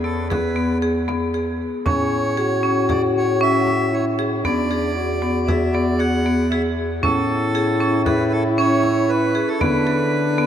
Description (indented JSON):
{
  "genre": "contemporary instrumental, chamber music in an uneven meter",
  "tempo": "116 BPM",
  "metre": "5/4",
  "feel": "straight",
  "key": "E mixolydian",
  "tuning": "A4 = 441 Hz",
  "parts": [
    { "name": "accordion", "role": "melody", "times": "0.0-10.5 s", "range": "A4 to F#5", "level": "-25 LUFS", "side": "right 2 dB", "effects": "none" },
    { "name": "marimba with hard mallets", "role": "arpeggios", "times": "0.0-10.5 s", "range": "B3 to A4", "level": "-21 LUFS", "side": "equal", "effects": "none" },
    { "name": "mellow bass clarinet", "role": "bass", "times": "0.0-10.5 s", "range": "E2 to D3", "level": "-24 LUFS", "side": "equal", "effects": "none" },
    { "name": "frame drum", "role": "percussion", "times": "0.3-10.5 s", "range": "none", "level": "-28 LUFS", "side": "right 1 dB", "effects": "none" },
    { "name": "mellow French horn", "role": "second line", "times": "1.9-10.5 s", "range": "D4 to G#4", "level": "-23 LUFS", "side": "left 2 dB", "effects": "none" }
  ],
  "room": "wet cathedral reverb, RT60 5.6 s",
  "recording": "in a vast, echoing space",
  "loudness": "-17 LUFS",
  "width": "side -9 dB against mid",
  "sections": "0.0-10.5 A section",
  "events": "none",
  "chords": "0.0 E; 1.9 Amaj7; 4.4 E7; 7.0 Amaj7; 9.6 D5"
}